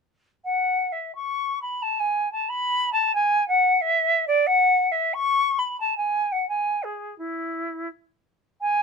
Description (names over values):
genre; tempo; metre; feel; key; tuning
classical, baroque-style fantasia for unaccompanied flute; 89 BPM; 3/4; rubato; unclear; A4 = 439 Hz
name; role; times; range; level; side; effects
silver concert flute; solo; 0.4-8.8 s; E4 to C#6; -21 LUFS; equal; none
room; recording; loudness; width
light reverb; close, detailed microphones; -21 LUFS; side -5 dB against mid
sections
0.5-8.8 A section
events
none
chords
none